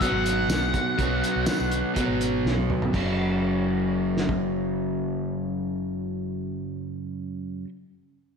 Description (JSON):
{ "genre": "classic rock", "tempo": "122 BPM", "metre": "4/4", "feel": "straight", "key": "unclear", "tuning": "A4 = 441 Hz", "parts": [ { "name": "octave-fuzz lead guitar", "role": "melody", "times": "0.0-2.4 s", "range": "F#5", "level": "-28 LUFS", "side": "left 1 dB", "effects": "distortion, slapback echo" }, { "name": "crunchy overdriven guitar", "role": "riff", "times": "0.0-7.7 s", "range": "F#2 to B3", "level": "-26 LUFS", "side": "equal", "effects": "slapback echo" }, { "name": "cloth-damped thuddy drum kit", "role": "drums", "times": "0.0-4.4 s", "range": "crash cymbal, hi-hat, kick drum, snare drum, tambourine, toms", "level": "-29 LUFS", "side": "equal", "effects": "none" }, { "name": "hollow-body short-scale fingered electric bass", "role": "bass", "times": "0.1-7.6 s", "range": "F#1 to B1", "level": "-32 LUFS", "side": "equal", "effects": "none" } ], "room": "wet scoring stage reverb, RT60 1.5 s, studio ambience", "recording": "big arena sound", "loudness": "-24 LUFS", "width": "side -6 dB against mid", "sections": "0.0-2.9 A section; 2.9-6.9 B section", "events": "drum fill 2.4-2.9", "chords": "0.0 B5; 2.9 F#5" }